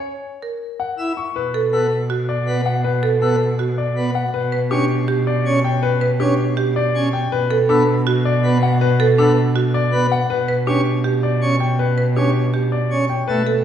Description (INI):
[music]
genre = classical, minimalist pattern music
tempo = 161 BPM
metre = 4/4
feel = straight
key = B minor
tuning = A4 = 441 Hz
[part]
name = bright concert grand piano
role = melody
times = 0.0-13.5 s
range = G4 to C#6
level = -22 LUFS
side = left 6 dB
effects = none
[part]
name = marimba with hard mallets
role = arpeggios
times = 0.0-13.6 s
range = D4 to C#5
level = -22 LUFS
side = right 5 dB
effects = none
[part]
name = pipe organ, plenum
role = accompaniment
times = 1.0-13.4 s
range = A3 to E4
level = -24 LUFS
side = right 1 dB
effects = none
[part]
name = rich cello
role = bass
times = 1.4-13.6 s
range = B2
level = -19 LUFS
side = equal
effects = none
[sound]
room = wet recital hall reverb, RT60 1.4 s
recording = heard from further back in the room, nothing above 10.9 kHz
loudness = -16 LUFS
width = side -9 dB against mid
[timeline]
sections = 0.0-1.4 A section; 1.4-13.6 B section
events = none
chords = 0.0 F#7 (rootless); 1.4 B7(no3); 4.3 G/B; 7.3 Bm7; 10.3 G/B